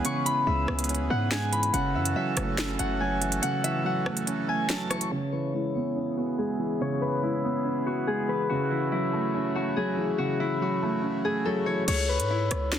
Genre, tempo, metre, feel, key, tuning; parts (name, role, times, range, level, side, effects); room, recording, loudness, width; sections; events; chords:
hip hop, drill; 142 BPM; 4/4; half-time; C# minor; A4 = 441 Hz
Celtic harp; melody; 0.0-12.8 s; E4 to C#6; -29 LUFS; left 3 dB; low-pass filter
felt-muted upright piano; accompaniment; 0.0-11.9 s; C#3 to C#4; -29 LUFS; right 2 dB; low-pass filter
accordion; sustained chords; 0.0-11.8 s; C#3 to B4; -37 LUFS; equal; low-pass filter
hard-hitting 808-style bass; bass; 0.0-3.4, 11.9-12.8 s; F#1 to G#2; -30 LUFS; equal
drill drum kit; drums; 0.0-5.1, 11.9-12.8 s; crash cymbal, handclaps, hi-hat, rim click, snare drum; -30 LUFS; equal
light reverb, small room ambience; dense, heavily limited modern master; -25 LUFS; side -9 dB against mid
0.0-5.1 A section; 5.1-11.9 B section
kick muted 3.4-5.1; filter sweep 5.1-11.9
0.0 C#m7; 1.7 F#m7; 5.1 C#m7; 8.5 F#m7; 11.9 C#m